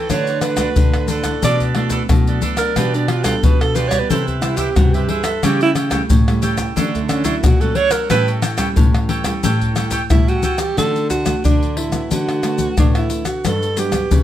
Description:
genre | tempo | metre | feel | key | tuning
samba and choro | 90 BPM | 4/4 | straight | D major | A4 = 443 Hz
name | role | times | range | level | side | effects
breathy alto saxophone | melody | 0.0-14.2 s | A3 to D5 | -20 LUFS | right 4 dB | none
cavaquinho | accompaniment | 0.0-10.8 s | D4 to G5 | -25 LUFS | right 3 dB | none
nylon-string guitar | accompaniment | 0.0-14.2 s | G2 to F#4 | -24 LUFS | equal | none
nylon-string guitar | bass | 0.0-14.2 s | G2 to D3 | -22 LUFS | right 1 dB | none
maracas, surdo, pandeiro and tamborim | percussion | 0.1-14.2 s | none | -18 LUFS | left 2 dB | none
room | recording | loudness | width
light reverb | none | -14 LUFS | side -12 dB against mid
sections
0.0-10.8 A section; 10.8-14.2 B section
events
alto saxophone solo 0.0-10.8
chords
0.1 D6; 1.4 Bm7; 2.8 G7/B; 4.1 Cmaj7; 5.4 A7/C#; 6.8 Dmaj7; 8.1 A7; 10.8 Dmaj7; 12.1 Bm7/D; 13.4 Gmaj7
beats
| 0.10 0.77 1.44 2.10 | 2.77 3.43 4.10 4.77 | 5.43 6.10 6.76 7.43 | 8.10 8.77 9.43 10.10 | 10.77 11.44 12.11 12.78 | 13.45 14.11

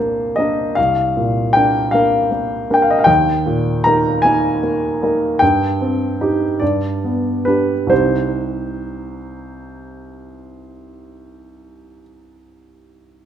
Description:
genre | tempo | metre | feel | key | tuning
classical, romantic nocturne for solo piano | 43-52 BPM (dotted quarters) | 12/8 | rubato | C minor | A4 = 440 Hz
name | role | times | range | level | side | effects
warm grand piano | solo | 0.0-13.3 s | C2 to Bb5 | -15 LUFS | equal | none
room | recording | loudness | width
moderate recital hall reverb, RT60 1.4 s | close, detailed microphones | -14 LUFS | side -9 dB against mid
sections
0.0-13.3 A section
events
none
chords
0.0 Bb/C; 3.1 Eb; 5.4 Cm/G; 6.6 G; 7.9 Cm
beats
0.78 1.93 | 3.08 4.24 5.41 6.61 | 7.91 9.29 10.64 12.01

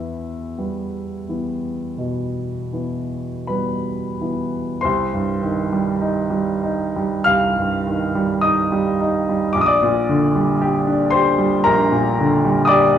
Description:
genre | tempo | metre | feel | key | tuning
classical, romantic nocturne for solo piano | 38-58 BPM | 4/4 | rubato | E minor, C minor from 4.8 s | A4 = 440 Hz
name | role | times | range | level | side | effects
clear upright piano | solo | 0.0-13.0 s | Bb1 to F6 | -17 LUFS | equal | none
room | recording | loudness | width
wet large studio reverb, RT60 0.9 s | heard from further back in the room | -17 LUFS | side -9 dB against mid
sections
0.0-4.8 A section; 4.8-13.0 B section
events
none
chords
0.0 Em; 4.8 Cm; 9.5 Gm/Bb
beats
0.58 1.98 3.49 | 4.84 6.01 7.27 8.43 | 9.55 10.60 11.65 12.70

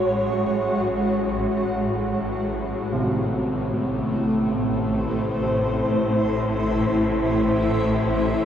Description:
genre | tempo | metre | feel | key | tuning
dark ambient drone | free time | none | none | unclear | A4 = 437 Hz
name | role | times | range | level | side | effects
granular cloud pad | sustained chords | 0.0-8.4 s | G#3 to C#5 | -22 LUFS | equal | built-in reverb
swarming drone | drone | 0.0-8.4 s | A1 to A2 | -27 LUFS | equal | built-in reverb
old church bells | arpeggios | 2.9-8.4 s | C3 | -29 LUFS | right 1 dB | diffuse ambient delay
room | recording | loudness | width
wet huge ambient reverb, RT60 8.2 s | dark, warm production | -20 LUFS | side -9 dB against mid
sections
0.0-8.4 A section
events
none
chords
0.0 F#sus2; 2.4 Am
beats
free time

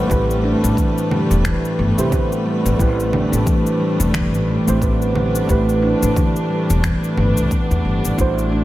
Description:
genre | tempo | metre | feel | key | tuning
organic downtempo | 89 BPM | 4/4 | swing 59% on 16ths | unclear | A4 = 440 Hz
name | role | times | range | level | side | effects
muted felt-like synth keys | accompaniment | 0.0-8.6 s | A3 to C5 | -22 LUFS | right 3 dB | chorus, sidechain pumping, tape echo
warm chamber string section | sustained chords | 0.0-8.6 s | A2 to B4 | -24 LUFS | left 1 dB | sidechain pumping
upright bass | bass | 0.0-8.6 s | E1 to E2 | -20 LUFS | equal | none
handpan | arpeggios | 0.1-8.6 s | E3 to D4 | -21 LUFS | equal | tape echo
electronic congas, shaker and finger snaps | drums | 0.1-8.5 s | none | -26 LUFS | equal | none
electronic kick drum | drums | 0.1-8.3 s | none | -20 LUFS | equal | none
room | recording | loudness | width
moderate scoring stage reverb, RT60 1.8 s, studio ambience | none | -15 LUFS | side -15 dB against mid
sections
0.0-8.6 A section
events
none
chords
0.0 Am9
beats
| 0.10 0.77 1.45 2.12 | 2.79 3.47 4.14 4.82 | 5.49 6.17 6.84 7.51 | 8.19

